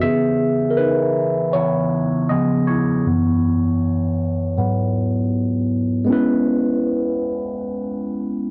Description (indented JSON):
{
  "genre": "soul",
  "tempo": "79 BPM",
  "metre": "4/4",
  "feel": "swing 54% on 16ths",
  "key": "C# minor",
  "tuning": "A4 = 440 Hz",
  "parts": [
    { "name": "overdriven tine electric piano", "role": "solo", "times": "0.0-8.5 s", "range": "F#2 to E5", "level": "-20 LUFS", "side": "equal", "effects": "phaser, cassette tape" }
  ],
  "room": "wet small room reverb, RT60 0.5 s",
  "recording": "home recording on cassette",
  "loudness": "-20 LUFS",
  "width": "mono",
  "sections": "0.0-6.1 A section; 6.1-8.5 B section",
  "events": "tine electric piano solo 0.0-6.1",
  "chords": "0.0 C#m9; 2.3 C#7; 3.1 F#7sus4; 4.6 G#m7; 6.1 C#m7"
}